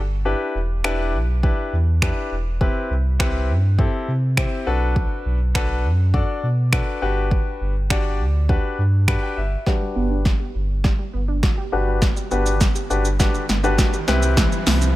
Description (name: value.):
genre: dance-pop.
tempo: 102 BPM.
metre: 4/4.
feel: straight.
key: G major.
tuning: A4 = 440 Hz.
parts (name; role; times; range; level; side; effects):
sub bass with octave; bass; 0.0-15.0 s; E1 to C3; -20 LUFS; equal; sidechain pumping.
clear baby grand piano; accompaniment; 0.3-15.0 s; C4 to B5; -25 LUFS; left 3 dB; sidechain pumping, low-pass filter.
deep house drum kit; drums; 0.8-15.0 s; finger snaps, hi-hat, kick drum, shaker, snare drum; -20 LUFS; equal; overdrive.
wide unison pluck; arpeggios; 9.7-14.9 s; G3 to G4; -30 LUFS; right 4 dB; sidechain pumping, low-pass filter, digital delay.
riser; sound effects; 11.7-15.0 s; none; -32 LUFS; equal; none.
room: digital ambience.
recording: none.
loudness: -18 LUFS.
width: side -16 dB against mid.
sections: 0.0-9.7 A section; 9.7-15.0 B section.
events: kick muted 0.3-1.4; grand piano fill 8.8-9.7; build-up 9.7-15.0; drum fill 9.7-15.0; filter sweep 9.7-15.0; riser 11.7-15.0.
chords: 0.3 Em7; 2.6 Cmaj7; 4.7 Bm7; 7.0 Gmaj7; 14.1 Cmaj7.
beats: | 0.26 0.84 1.43 2.02 | 2.61 3.20 3.78 4.37 | 4.96 5.55 6.14 6.72 | 7.31 7.90 8.49 9.08 | 9.67 10.26 10.84 11.43 | 12.02 12.61 13.20 13.78 | 14.37.